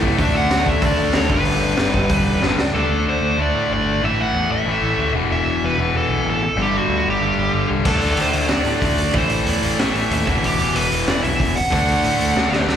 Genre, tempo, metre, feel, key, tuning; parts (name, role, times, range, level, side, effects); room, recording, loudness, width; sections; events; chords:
punk rock; 187 BPM; 4/4; straight; A4 = 440 Hz
overdriven electric guitar; riff; 0.0-3.1, 7.9-12.8 s; E2 to D4; -28 LUFS; right 2 dB; slapback echo
sludgy distorted guitar; riff; 0.0-12.8 s; E2 to D4; -25 LUFS; right 10 dB; overdrive, slapback echo
tight distorted guitar; riff; 0.0-12.8 s; E2 to D4; -22 LUFS; left 10 dB; distortion, slapback echo
growling picked electric bass; bass; 0.0-12.8 s; E1 to A2; -24 LUFS; equal; overdrive
raw garage drum kit; drums; 0.0-2.7, 7.9-12.8 s; crash cymbal, hi-hat, kick drum, snare drum; -22 LUFS; equal
dark smooth lead guitar; melody; 0.2-12.6 s; F#4 to F#5; -22 LUFS; right 2 dB; overdrive
little or no reverb; live gig heard through the venue's PA, recital hall reverb; -16 LUFS; side -9 dB against mid
0.0-2.7 A section; 2.7-12.8 B section
drum fill 2.4-2.7, 12.4-12.8; half time 2.7-12.8
0.2 D; 1.3 G; 2.7 D5; 4.0 A5; 5.1 E5; 6.6 G5; 7.9 D5; 9.2 Am; 10.3 Em; 11.7 D